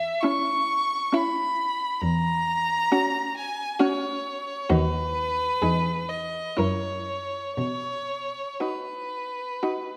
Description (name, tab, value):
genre	classical, slow romantic movement for string quartet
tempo	57-69 BPM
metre	3/4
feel	rubato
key	B major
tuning	A4 = 445 Hz
part	rich violin	melody	0.0-10.0 s	B4 to C#6	-29 LUFS	equal	none
part	rich cello	bass	0.0-8.4 s	D#2 to B2	-29 LUFS	equal	none
part	clear violin	second line	0.2-10.0 s	E4 to A#4	-33 LUFS	equal	none
part	rich viola	accompaniment	0.2-10.0 s	C#4 to E4	-31 LUFS	equal	none
room	moderate scoring stage reverb, RT60 1.8 s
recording	none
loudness	-26 LUFS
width	mono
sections	0.0-10.0 A section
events	none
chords	0.0 C#m; 2.0 F#7/E; 4.7 B/D#; 5.6 Emaj7; 6.6 F#7; 7.6 B